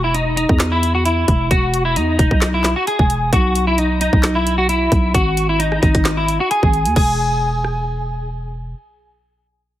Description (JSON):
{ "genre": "hip hop, trap", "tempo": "132 BPM", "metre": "4/4", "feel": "half-time", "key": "E major", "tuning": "A4 = 442 Hz", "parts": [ { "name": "clean electric guitar", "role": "melody", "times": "0.0-8.3 s", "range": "D#4 to G#4", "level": "-18 LUFS", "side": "equal", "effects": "ensemble chorus, low-pass filter, digital delay" }, { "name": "growling 808-style bass", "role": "bass", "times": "0.0-8.7 s", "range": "E1 to E2", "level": "-19 LUFS", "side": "equal", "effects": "none" }, { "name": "trap drum kit", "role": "drums", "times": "0.1-7.8 s", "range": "crash cymbal, handclaps, hi-hat, kick drum, rim click, snare drum", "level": "-18 LUFS", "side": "equal", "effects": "none" } ], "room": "digital ambience", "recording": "heavily compressed radio sound", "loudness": "-14 LUFS", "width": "side -13 dB against mid", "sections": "0.0-7.0 A section; 7.0-9.8 B section", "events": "none", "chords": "0.0 E5; 3.3 Bsus4; 5.1 G#5; 7.0 E" }